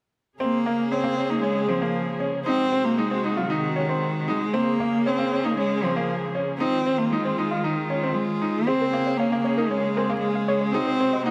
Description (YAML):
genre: electronica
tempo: 116 BPM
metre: 4/4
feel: straight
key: Bb minor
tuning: A4 = 440 Hz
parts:
  - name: rich cello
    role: melody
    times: 0.4-11.3 s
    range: Eb3 to C4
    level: -26 LUFS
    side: equal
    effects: none
  - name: rich studio string section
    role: sustained chords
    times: 0.4-11.3 s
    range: C3 to Ab4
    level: -33 LUFS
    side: equal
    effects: none
  - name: bright concert grand piano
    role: riff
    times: 0.4-11.3 s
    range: Bb3 to F4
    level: -29 LUFS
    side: equal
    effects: delay
  - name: warbly dusty pluck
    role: arpeggios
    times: 8.7-11.3 s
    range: Ab4 to Gb5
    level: -33 LUFS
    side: equal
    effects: chorus, delay
room: moderate lush hall reverb, RT60 3.0 s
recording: none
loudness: -24 LUFS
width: mono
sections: 0.4-11.3 A section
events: none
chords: 0.4 Bbm7; 2.5 Ab7; 4.5 Bbm7; 6.6 Fm7; 8.7 Bbm7; 10.7 Ab7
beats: | 0.40 0.92 1.44 1.96 | 2.47 2.99 3.51 4.02 | 4.54 5.06 5.58 6.09 | 6.61 7.13 7.64 8.16 | 8.68 9.20 9.71 10.23 | 10.75 11.27